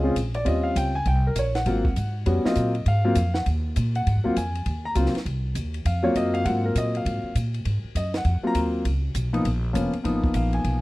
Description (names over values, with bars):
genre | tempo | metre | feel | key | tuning
jazz, small-group swing and bop | 200 BPM | 4/4 | swing 63% on 8ths | Ab mixolydian | A4 = 438 Hz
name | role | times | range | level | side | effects
warm grand piano | accompaniment | 0.0-10.8 s | F3 to Bb5 | -24 LUFS | left 1 dB | none
upright bass | bass | 0.0-10.8 s | F1 to Bb2 | -24 LUFS | equal | none
compact cocktail drum kit | drums | 0.2-10.7 s | hi-hat, kick drum, ride cymbal, snare drum | -32 LUFS | equal | none
room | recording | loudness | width
studio ambience | dry, close 1970s-style studio recording | -22 LUFS | side -19 dB against mid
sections
0.0-4.1 A section; 4.1-10.8 A section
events
none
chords
0.5 Eb13; 1.7 Ab13; 8.8 Db13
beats
0.16 | 0.46 0.76 1.06 1.36 | 1.66 1.96 2.26 2.56 | 2.85 3.15 3.45 3.75 | 4.05 4.35 4.65 4.95 | 5.25 5.55 5.85 6.15 | 6.45 6.75 7.05 7.35 | 7.65 7.95 8.25 8.55 | 8.85 9.15 9.45 9.75 | 10.05 10.35 10.64